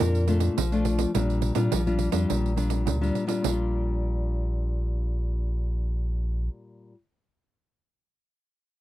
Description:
samba and choro; 105 BPM; 4/4; straight; Bb major; A4 = 435 Hz
breathy alto saxophone; melody; 0.0-0.6 s; Bb4; -33 LUFS; left 1 dB
nylon-string guitar; accompaniment; 0.0-7.0 s; Bb2 to F4; -28 LUFS; left 3 dB
sub bass with octave; bass; 0.0-6.5 s; Bb1 to Bb2; -26 LUFS; equal
pandeiro; percussion; 0.0-3.6 s; -30 LUFS; right 12 dB
little or no reverb; dry, close 1970s-style studio recording; -24 LUFS; side -14 dB against mid
0.0-1.1 A section; 1.1-3.4 B section; 3.4-5.7 C section
0.0 Bbmaj7; 1.1 Bb6
0.01 0.58 | 1.15 1.72 2.29 2.86 | 3.43 4.01 4.58 5.15

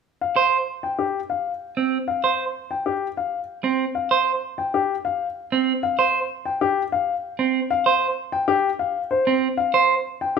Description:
classical, minimalist pattern music; 192 BPM; 6/4; straight; A4 = 440 Hz
clear baby grand piano; melody; 0.2-10.4 s; G4 to G5; -23 LUFS; left 6 dB
clean electric guitar; arpeggios; 0.4-9.9 s; C4 to C5; -20 LUFS; right 7 dB
moderate large studio reverb, RT60 1.2 s; minimal, uncompressed stereo recording; -20 LUFS; side -6 dB against mid
0.1-10.4 A section
0.1 Csus4
| 0.05 0.36 0.68 0.99 1.30 1.61 | 1.93 2.24 2.55 2.86 3.18 3.49 | 3.80 4.11 4.43 4.74 5.05 5.36 | 5.68 5.99 6.30 6.61 6.93 7.24 | 7.55 7.86 8.18 8.49 8.80 9.11 | 9.43 9.74 10.05 10.36

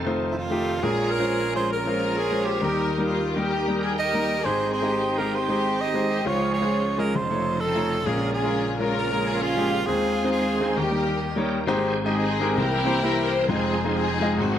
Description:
gospel; 133 BPM; 4/4; swing 62% on 8ths; Ab major; A4 = 440 Hz
warm studio string section; melody; 0.0-14.6 s; Ab3 to C5; -27 LUFS; left 2 dB
clear grand piano; accompaniment; 0.0-14.6 s; F1 to Eb5; -25 LUFS; left 1 dB
bright tonewheel organ; sustained chords; 0.0-14.6 s; Db3 to G5; -30 LUFS; right 3 dB; slow rotary speaker, chorus vibrato
breathy tenor saxophone; melody; 0.3-11.5 s; Fb4 to Eb5; -27 LUFS; right 4 dB
moderate large studio reverb, RT60 1.2 s, small room ambience; -21 LUFS; side -10 dB against mid
0.0-11.7 A section; 11.7-14.6 B section
0.0 F7; 0.8 Bbm7; 2.6 Eb; 4.4 Abmaj7; 6.3 Dbmaj7; 7.2 F7b13; 8.1 Bbm7; 9.9 Ab/Eb; 10.8 Eb; 11.7 Abmaj7; 12.6 C7; 13.5 Fm7
0.37 | 0.82 1.28 1.73 2.18 | 2.63 3.08 3.54 3.99 | 4.44 4.89 5.35 5.80 | 6.25 6.71 7.16 7.61 | 8.06 8.52 8.97 9.42 | 9.87 10.32 10.78 11.23 | 11.68 12.13 12.58 13.03 | 13.48 13.94 14.38

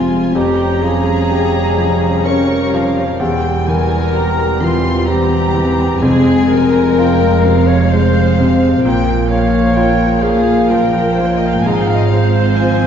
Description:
classical; 63 BPM; 3/4; rubato; F minor; A4 = 439 Hz
bright grand piano; melody; 0.0-12.9 s; E2 to G4; -16 LUFS; left 2 dB
warm chamber violin section; melody; 0.0-12.9 s; F5 to Db6; -23 LUFS; left 2 dB
mellow clarinet; second line; 0.0-12.9 s; F4 to Bb5; -19 LUFS; left 2 dB
warm chamber violin section; second line; 0.0-12.9 s; F4 to Bb5; -25 LUFS; left 1 dB
warm chamber viola section; accompaniment; 0.0-12.9 s; F3 to Db4; -18 LUFS; right 1 dB
dark studio cello section; bass; 0.0-12.9 s; E2 to Bb2; -20 LUFS; right 3 dB
warm chamber double bass section; bass; 0.0-12.9 s; E1 to Bb1; -20 LUFS; right 3 dB
timpani; percussion; 6.0-7.4 s; F2; -22 LUFS; left 1 dB
wet scoring stage reverb, RT60 1.8 s; heard from further back in the room, nothing above 7.8 kHz; -11 LUFS; side -8 dB against mid
0.0-12.9 A section
0.4 Gm7b5/F; 3.2 C7/E; 6.0 Fm; 8.8 Bbm; 11.7 Fm/Ab
| 0.35 1.30 2.26 | 3.21 4.15 5.08 | 6.02 6.97 7.92 | 8.85 9.76 10.70 | 11.65 12.60

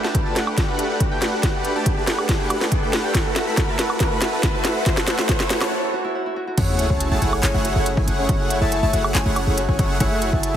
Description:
future bass; 140 BPM; 4/4; half-time; F# minor; A4 = 439 Hz
Celtic harp; arpeggios; 0.0-10.6 s; E4 to A5; -31 LUFS; right 1 dB; sidechain pumping, dub echo
supersaw chords; riff; 0.0-10.6 s; A3 to B5; -24 LUFS; equal; sidechain pumping, dub echo
trap drum kit; drums; 0.0-10.5 s; crash cymbal, handclaps, hi-hat, snare drum, woodblock; -24 LUFS; equal
riser and sub drop; sound effects; 0.0-8.3 s; -29 LUFS; equal
electronic kick drum; drums; 0.1-10.4 s; -22 LUFS; equal
soft octave-layered synth lead; melody; 6.6-10.6 s; C#5 to E5; -27 LUFS; left 2 dB; chorus, phaser, sidechain pumping, dub echo
airy dreamy lead; arpeggios; 6.6-10.6 s; F#5 to A5; -32 LUFS; left 1 dB; chorus, sidechain pumping
warm 808-style bass; bass; 6.6-10.6 s; F#1; -23 LUFS; equal; sidechain pumping
moderate lush hall reverb, RT60 2.0 s; heavily compressed radio sound, multiband compression; -18 LUFS; side -10 dB against mid
0.0-6.6 A section; 6.6-10.6 B section
build-up 0.0-6.6; drum fill 0.0-5.7; riser 0.0-5.7; break 5.7-6.6; drop 6.6-10.6; impact 6.6-8.3
0.0 Gmaj9; 3.1 B7sus4; 6.6 F#m9
0.15 0.57 1.00 | 1.43 1.86 2.29 2.72 | 3.15 3.58 4.00 4.43 | 4.86 5.29 5.72 6.15 | 6.58 7.00 7.43 7.86 | 8.29 8.72 9.15 9.57 | 10.00 10.43

